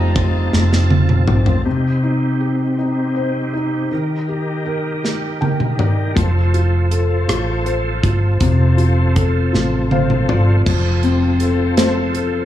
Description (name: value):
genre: six-eight pop ballad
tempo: 53 BPM (dotted quarters)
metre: 6/8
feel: straight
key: unclear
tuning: A4 = 441 Hz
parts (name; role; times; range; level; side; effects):
- muted French horn section; second line; 0.0-1.6 s; C4 to Eb4; -30 LUFS; right 1 dB; none
- felt-muted upright piano; accompaniment; 0.0-12.4 s; C3 to G5; -19 LUFS; left 2 dB; none
- bright tonewheel organ; sustained chords; 0.0-12.4 s; C3 to A5; -24 LUFS; right 1 dB; chorus vibrato, slow rotary speaker
- vintage muted fingered electric bass; bass; 0.0-1.6, 6.2-12.4 s; F1 to Bb1; -16 LUFS; right 1 dB; none
- modern studio drum kit; drums; 0.2-1.6, 5.0-12.3 s; crash cymbal, hi-hat, kick drum, ride cymbal, rim click, snare drum, toms; -18 LUFS; equal; none
room: small room ambience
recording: small room reverb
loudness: -14 LUFS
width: side -12 dB against mid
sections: 0.0-1.7 A section; 1.7-10.7 B section; 10.7-12.4 C section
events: felt piano solo 0.0-1.7; drum fill 0.5-1.7, 5.0-6.2, 9.5-10.7; felt piano fill 5.0-6.2, 9.5-10.7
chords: 0.0 F7; 1.7 Cm; 3.9 Eb; 6.2 F